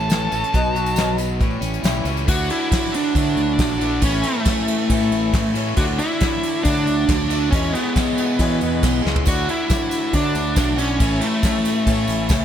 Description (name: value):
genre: folk rock and heartland rock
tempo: 138 BPM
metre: 4/4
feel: straight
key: unclear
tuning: A4 = 440 Hz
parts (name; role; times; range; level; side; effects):
- bluesy overdriven lead guitar; melody; 0.0-12.4 s; A3 to A5; -21 LUFS; right 1 dB; distortion
- picked twelve-string acoustic guitar; accompaniment; 0.0-12.4 s; E2 to A4; -28 LUFS; left 5 dB; none
- overdriven electric guitar; riff; 0.0-12.4 s; E2 to A4; -26 LUFS; equal; none
- fingered electric bass; bass; 0.0-12.4 s; A1 to E3; -24 LUFS; equal; none
- soft brush drum kit; drums; 0.1-12.4 s; crash cymbal, hi-hat, kick drum, ride cymbal, snare drum, splash cymbal, toms; -22 LUFS; equal; none
- tambourine; percussion; 0.1-2.2, 9.3-12.4 s; none; -36 LUFS; right 11 dB; none
room: light reverb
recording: none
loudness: -17 LUFS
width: side -9 dB against mid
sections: 0.0-2.3 A section; 2.3-12.4 B section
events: lead electric guitar solo 0.0-2.3; drum fill 9.0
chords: 0.0 A; 0.5 B; 1.4 A7; 2.3 Dadd9; 4.0 A; 5.8 Dadd9; 7.5 E6; 9.3 Dadd9; 11.0 A